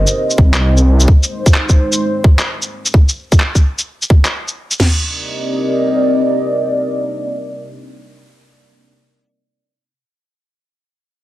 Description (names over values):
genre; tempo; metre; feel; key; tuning
future garage; 129 BPM; 4/4; swing 64% on 16ths; C minor; A4 = 440 Hz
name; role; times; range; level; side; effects
dark analog pad; sustained chords; 0.0-8.9 s; Ab3 to Eb5; -17 LUFS; equal; chorus, phaser, sidechain pumping
swelling detuned saw bass; bass; 0.0-1.1 s; C2; -11 LUFS; equal; sidechain pumping
electronic shaker and handclaps; drums; 0.1-4.8 s; none; -17 LUFS; equal; studio ambience
garage drum kit; drums; 0.4-4.9 s; crash cymbal, kick drum, snare drum, toms; -10 LUFS; equal; studio ambience
room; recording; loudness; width
light reverb; dense, heavily limited modern master, lossy compression artefacts; -12 LUFS; side -16 dB against mid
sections
0.0-4.8 A section; 4.8-8.5 B section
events
none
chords
0.0 Cm7; 1.1 Abmaj7; 2.9 N.C.; 4.8 Cm7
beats
0.15 0.61 | 1.08 1.54 2.01 2.48 | 2.94 3.40 3.87 4.33 | 4.80 5.26 5.73 6.20 | 6.66 7.13 7.59 8.06